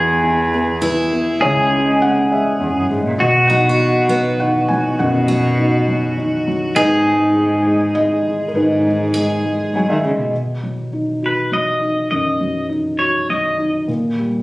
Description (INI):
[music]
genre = acoustic folk-pop ballad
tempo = 101 BPM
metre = 3/4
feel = straight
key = B major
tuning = A4 = 440 Hz
[part]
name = felt-muted upright piano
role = melody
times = 0.0-14.4 s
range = F#2 to G#5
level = -19 LUFS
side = equal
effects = none
[part]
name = pedal steel guitar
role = second line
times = 0.0-13.7 s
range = F#4 to D#5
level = -19 LUFS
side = equal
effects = none
[part]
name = dark cello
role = bass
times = 0.0-10.3 s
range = C#2 to F#3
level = -20 LUFS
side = equal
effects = none
[part]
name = picked steel-string acoustic guitar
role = arpeggios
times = 0.8-10.6 s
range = B3 to G#4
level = -20 LUFS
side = equal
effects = none
[sound]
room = moderate studio reverb, RT60 0.8 s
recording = recorded on a phone in the room, studio reverb, compression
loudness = -14 LUFS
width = side -20 dB against mid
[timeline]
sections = 0.0-10.3 A section; 10.3-14.4 B section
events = felt piano fill 9.4-10.3; pedal steel guitar solo 10.3-14.4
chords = 0.0 E; 1.4 C#m; 3.2 B; 6.8 G#m; 10.3 B; 13.9 A#5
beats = 0.24 0.83 | 1.42 2.01 2.61 | 3.20 3.80 4.39 | 4.99 5.58 6.17 | 6.76 7.35 7.94 | 8.53 9.13 9.72 | 10.32 10.92 11.51 | 12.11 12.70 13.29 | 13.88